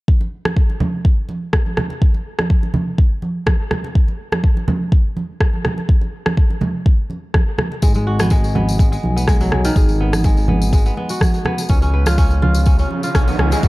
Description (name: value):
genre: afro house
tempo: 124 BPM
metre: 4/4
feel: swing 53% on 16ths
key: G# dorian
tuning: A4 = 440 Hz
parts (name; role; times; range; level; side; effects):
- electronic kick drum; drums; 0.1-13.7 s; none; -14 LUFS; equal; small room ambience
- congas; percussion; 0.2-13.6 s; none; -22 LUFS; right 2 dB; none
- electronic rim click; drums; 0.5-13.5 s; none; -24 LUFS; equal; small room ambience
- kora; arpeggios; 7.8-13.7 s; D#3 to B4; -22 LUFS; equal; sidechain pumping, tape echo
- smooth gliding synth bass; bass; 7.8-13.7 s; F#1 to C#2; -18 LUFS; equal; sidechain pumping
- tambourine; percussion; 7.8-13.7 s; none; -32 LUFS; left 4 dB; none
- riser; sound effects; 12.3-13.7 s; none; -26 LUFS; right 2 dB; none
room: small room ambience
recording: dark, warm production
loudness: -14 LUFS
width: side -20 dB against mid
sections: 0.1-13.7 A section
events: riser 12.3-13.7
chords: 0.1 N.C.; 7.8 G#m7; 11.7 C#